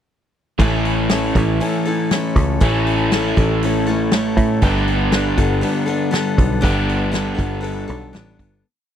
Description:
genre	folk rock and heartland rock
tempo	120 BPM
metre	4/4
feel	straight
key	A mixolydian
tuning	A4 = 440 Hz
part	picked steel-string acoustic guitar	accompaniment	0.6-8.6 s	A2 to A4	-22 LUFS	left 4 dB	none
part	crunchy overdriven guitar	riff	0.6-8.6 s	G2 to G4	-20 LUFS	right 1 dB	none
part	picked electric bass	bass	0.6-8.6 s	G1 to A2	-21 LUFS	right 1 dB	none
part	natural country drum kit	drums	0.6-8.5 s	hi-hat, kick drum, snare drum	-19 LUFS	equal	none
room	little or no reverb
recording	dry, close 1970s-style studio recording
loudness	-15 LUFS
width	side -9 dB against mid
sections	0.6-8.6 verse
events	fade-out 6.6-8.6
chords	0.6 A; 4.6 Gadd9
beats	| 0.61 1.11 1.61 2.12 | 2.62 3.13 3.63 4.13 | 4.64 5.14 5.64 6.14 | 6.64 7.14 7.64 8.14

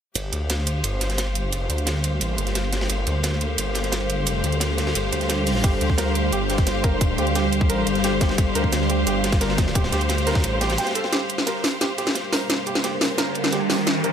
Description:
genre	dark technical drum and bass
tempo	175 BPM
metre	4/4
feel	straight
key	G minor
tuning	A4 = 440 Hz
part	deep dark ambient pad	sustained chords	1.3-14.1 s	G3 to D5	-27 LUFS	equal	chorus, built-in reverb, sidechain pumping
part	snarling distorted saw bass	bass	0.2-10.8 s	G1 to D2	-25 LUFS	equal	distortion, tube saturation
part	crunchy breakbeat drum kit	drums	0.2-14.1 s	hi-hat, ride cymbal, snare drum	-31 LUFS	equal	high-pass filter on cymbals, studio reverb, high-pass filter on hats, high-pass filter on snare, high-pass filter on room
part	drum and bass drum kit	drums	0.2-14.1 s	hi-hat, snare drum	-24 LUFS	right 1 dB	overdrive, studio reverb
part	clear studio string section	texture	0.2-14.1 s	G4 to F5	-27 LUFS	equal	sidechain pumping
part	felt-muted upright piano	arpeggios	5.6-14.1 s	G4 to G5	-30 LUFS	right 1 dB	sidechain pumping, low-pass filter, ping-pong delay
part	electronic kick drum	drums	5.6-10.4 s	none	-20 LUFS	equal	overdrive, studio reverb
part	riser	sound effects	12.3-14.1 s	none	-31 LUFS	right 2 dB	none
room	light reverb, small room ambience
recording	none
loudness	-20 LUFS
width	side -8 dB against mid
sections	0.2-11.1 A section; 11.1-14.1 B section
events	build-up 11.1-14.1; drum fill 11.1-14.1; riser 12.3-14.1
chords	0.2 Gm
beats	| 0.15 0.50 0.84 1.18 | 1.52 1.87 2.21 2.55 | 2.90 3.24 3.58 3.92 | 4.27 4.61 4.95 5.30 | 5.64 5.98 6.33 6.67 | 7.01 7.35 7.70 8.04 | 8.38 8.72 9.07 9.41 | 9.75 10.10 10.44 10.78 | 11.12 11.47 11.81 12.15 | 12.50 12.84 13.18 13.53 | 13.87

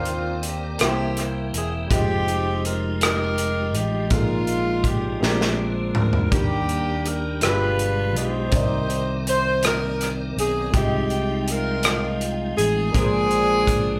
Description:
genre	slow gospel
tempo	54 BPM (dotted quarters)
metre	6/8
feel	straight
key	unclear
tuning	A4 = 440 Hz
part	warm saxophone section	melody	0.0-14.0 s	Ab3 to C5	-27 LUFS	equal	none
part	warm upright piano	accompaniment	0.0-14.0 s	G2 to B5	-32 LUFS	equal	none
part	tonewheel organ	sustained chords	0.0-14.0 s	B2 to G5	-33 LUFS	equal	fast rotary speaker, chorus vibrato
part	fingered electric bass	bass	0.0-14.0 s	E1 to Eb2	-29 LUFS	equal	none
part	modern studio drum kit	drums	0.1-13.8 s	hi-hat, kick drum, rim click, snare drum, toms	-26 LUFS	equal	none
room	moderate large studio reverb, RT60 1.0 s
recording	band playing live in one room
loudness	-22 LUFS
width	mono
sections	0.0-14.0 A section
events	drum fill 5.2-6.3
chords	0.0 Cm9/Eb; 0.8 C7; 1.9 Fm9; 4.1 Bb7sus4; 5.2 Bb9; 6.3 Ebmaj7; 7.4 G7b9; 8.5 Cm9; 10.7 Fm9/C; 12.9 Bb9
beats	0.80 | 1.91 3.01 | 4.11 5.22 | 6.32 7.42 | 8.53 9.63 | 10.73 11.84 | 12.94

